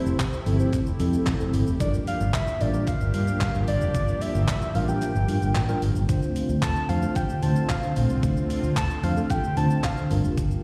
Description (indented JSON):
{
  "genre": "dance-pop",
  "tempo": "112 BPM",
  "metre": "4/4",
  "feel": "straight",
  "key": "unclear",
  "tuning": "A4 = 440 Hz",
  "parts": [
    { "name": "soft octave-layered synth lead", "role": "melody", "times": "0.0-10.1 s", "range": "C5 to A5", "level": "-34 LUFS", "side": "equal", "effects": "chorus, tape echo, slapback echo" },
    { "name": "mellow tine electric piano", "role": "accompaniment", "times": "0.0-10.6 s", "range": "F3 to C5", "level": "-31 LUFS", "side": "equal", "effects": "sidechain pumping, slapback echo" },
    { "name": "sweeping resonant pad", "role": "sustained chords", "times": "0.0-10.6 s", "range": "D3 to G4", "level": "-36 LUFS", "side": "equal", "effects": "chorus, sidechain pumping" },
    { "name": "vintage muted fingered electric bass", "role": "bass", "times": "0.1-10.5 s", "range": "F1 to D3", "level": "-26 LUFS", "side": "equal", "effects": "sidechain pumping" },
    { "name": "crisp 8-bit digital drum machine", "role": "drums", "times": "0.1-10.6 s", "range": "handclaps, hi-hat, kick drum, shaker", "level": "-31 LUFS", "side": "equal", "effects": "overdrive" },
    { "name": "group handclap", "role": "percussion", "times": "0.2-10.0 s", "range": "none", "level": "-46 LUFS", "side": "equal", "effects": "none" }
  ],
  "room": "light reverb",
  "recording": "live gig heard through the venue's PA, recital hall reverb",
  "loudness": "-24 LUFS",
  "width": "mono",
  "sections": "0.0-10.6 A section",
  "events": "kick muted 5.0-6.1",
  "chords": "0.0 Fmaj7; 1.8 Gm7; 6.1 Dm7; 10.1 Gm7",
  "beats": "0.20 0.73 1.27 | 1.80 2.34 2.88 3.41 | 3.95 4.48 5.02 5.55 | 6.09 6.63 7.16 7.70 | 8.23 8.77 9.30 9.84 | 10.38"
}